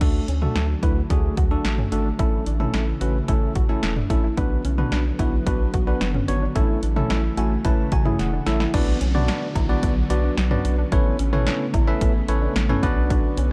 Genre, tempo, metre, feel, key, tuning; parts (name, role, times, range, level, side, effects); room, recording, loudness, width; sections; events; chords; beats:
synth-pop; 110 BPM; 4/4; straight; B minor; A4 = 440 Hz
bell-like tine electric piano; accompaniment; 0.0-13.4 s; A3 to A5; -29 LUFS; equal; shimmer reverb
soft string machine; sustained chords; 0.5-13.5 s; C#3 to B3; -33 LUFS; equal; ensemble chorus, shimmer reverb
soft round pluck; arpeggios; 0.0-13.5 s; C#4 to F#4; -34 LUFS; equal; chorus, slapback echo, shimmer reverb
round analog bass; bass; 0.0-13.5 s; E1 to D2; -26 LUFS; equal
punchy analog drum machine; drums; 0.0-13.5 s; cowbell, crash cymbal, hi-hat, kick drum, snare drum, toms; -26 LUFS; equal
downlifter; sound effects; 8.8-13.1 s; -41 LUFS; equal
light reverb, digital ambience; dark, warm production; -22 LUFS; mono
0.0-8.7 A section; 8.7-13.5 B section
tine electric piano fill 7.1-8.7; drum fill 8.2-8.7
0.0 D; 2.2 A; 4.4 Bm; 6.6 A; 8.7 Bm; 10.9 Aadd9; 12.8 Bm
| 0.01 0.56 1.10 1.65 | 2.19 2.74 3.28 3.83 | 4.38 4.92 5.47 6.01 | 6.56 7.10 7.65 8.19 | 8.74 9.28 9.83 10.38 | 10.92 11.47 12.01 12.56 | 13.10